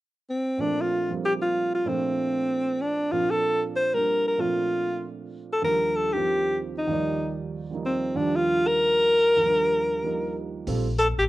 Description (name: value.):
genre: modal jazz.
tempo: 191 BPM.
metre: 4/4.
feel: swing 62% on 8ths.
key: Bb major.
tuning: A4 = 440 Hz.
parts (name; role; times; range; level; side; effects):
clear alto saxophone; melody; 0.3-11.2 s; C4 to C5; -22 LUFS; equal; none.
warm upright piano; accompaniment; 0.6-10.9 s; Eb2 to D5; -31 LUFS; right 5 dB; cassette tape.
upright bass; bass; 10.7-11.3 s; A1 to Bb1; -26 LUFS; left 1 dB; none.
hi-hat; drums; 10.7-11.1 s; none; -41 LUFS; right 1 dB; cassette tape.
room: moderate small room reverb, RT60 0.6 s.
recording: home recording on cassette.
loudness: -22 LUFS.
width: side -16 dB against mid.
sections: 0.6-10.7 A section.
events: none.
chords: 0.0 N.C.; 0.6 Bbmaj9; 5.6 Ebmaj9; 10.7 Bbmaj7sus2.